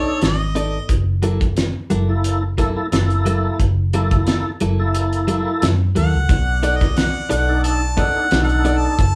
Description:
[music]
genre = straight-eighth soul blues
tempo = 89 BPM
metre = 4/4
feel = swing 54% on 16ths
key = unclear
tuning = A4 = 440 Hz
[part]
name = clear harmonica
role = melody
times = 0.0-0.9, 6.0-9.2 s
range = C#5 to A5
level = -24 LUFS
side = equal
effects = overdrive, slapback echo
[part]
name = tonewheel organ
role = accompaniment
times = 0.0-9.0 s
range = A#3 to A4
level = -25 LUFS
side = equal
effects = overdrive, chorus vibrato, slow rotary speaker
[part]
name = direct-recorded clean electric guitar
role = stabs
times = 0.0-8.9 s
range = F#3 to D5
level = -25 LUFS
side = equal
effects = none
[part]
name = vintage muted fingered electric bass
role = bass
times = 0.2-9.2 s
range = F#1 to F#2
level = -22 LUFS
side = equal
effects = none
[part]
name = cloth-damped thuddy drum kit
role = drums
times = 0.2-9.2 s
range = hi-hat, kick drum, snare drum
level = -22 LUFS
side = equal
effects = none
[part]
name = warm horn section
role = sustained chords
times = 6.3-9.2 s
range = A#3 to D5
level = -38 LUFS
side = equal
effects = none
[sound]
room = moderate small room reverb, RT60 0.5 s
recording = band playing live in one room, small room ambience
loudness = -18 LUFS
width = mono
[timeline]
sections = 0.0-9.2 A section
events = none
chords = 0.0 B7#9; 0.9 F#7#9; 6.3 B7#9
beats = 0.22 | 0.90 1.57 2.25 2.92 | 3.59 4.27 4.94 5.62 | 6.29 6.97 7.64 8.32 | 8.99

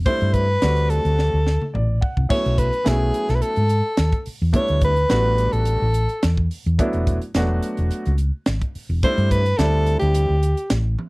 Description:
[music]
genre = electric jazz fusion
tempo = 107 BPM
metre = 4/4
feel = straight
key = unclear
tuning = A4 = 441 Hz
[part]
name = hollow-body short-scale fingered electric bass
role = bass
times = 0.0-10.9 s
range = E1 to G#2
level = -19 LUFS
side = equal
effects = none
[part]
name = clear soprano saxophone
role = melody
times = 0.1-10.8 s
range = G4 to C#5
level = -22 LUFS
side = equal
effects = slapback echo
[part]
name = warm grand piano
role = accompaniment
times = 0.1-10.3 s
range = F#3 to F#5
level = -26 LUFS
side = right 1 dB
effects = none
[part]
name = crisp fusion drum kit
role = drums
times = 0.1-11.1 s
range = crash cymbal, hi-hat, kick drum, snare drum, toms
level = -23 LUFS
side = equal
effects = none
[sound]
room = little or no reverb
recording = dry, close 1970s-style studio recording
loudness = -17 LUFS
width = side -25 dB against mid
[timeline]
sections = 0.0-2.3 A section; 2.3-11.1 A section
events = drum fill 1.2-2.3; grand piano fill 1.5-2.3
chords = 0.1 D9sus4; 2.3 B9sus4; 4.5 A9sus4; 6.8 E9sus4; 9.0 D9sus4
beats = | 0.06 0.62 1.18 1.74 | 2.30 2.86 3.42 3.99 | 4.55 5.11 5.67 6.23 | 6.79 7.35 7.91 8.47 | 9.03 9.59 10.15 10.71

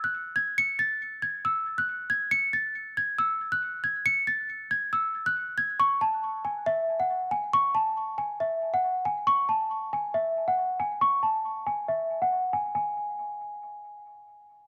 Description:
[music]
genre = hip hop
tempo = 138 BPM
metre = 4/4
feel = half-time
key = unclear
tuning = A4 = 439 Hz
[part]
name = worn celesta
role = solo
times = 0.0-14.0 s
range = E5 to C#7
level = -28 LUFS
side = equal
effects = low-pass filter, delay
[sound]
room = moderate concert hall reverb, RT60 2.0 s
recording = none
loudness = -28 LUFS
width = mono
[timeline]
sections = 0.0-5.8 A section; 5.8-12.7 B section; 12.7-14.7 C section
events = none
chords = none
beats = 0.14 | 0.57 1.01 1.44 1.88 | 2.31 2.75 3.18 3.62 | 4.05 4.49 4.92 5.36 | 5.79 6.23 6.66 7.10 | 7.53 7.97 8.40 8.84 | 9.27 9.71 10.14 10.57 | 11.01 11.44 11.88 12.31 | 12.75 13.18 13.62

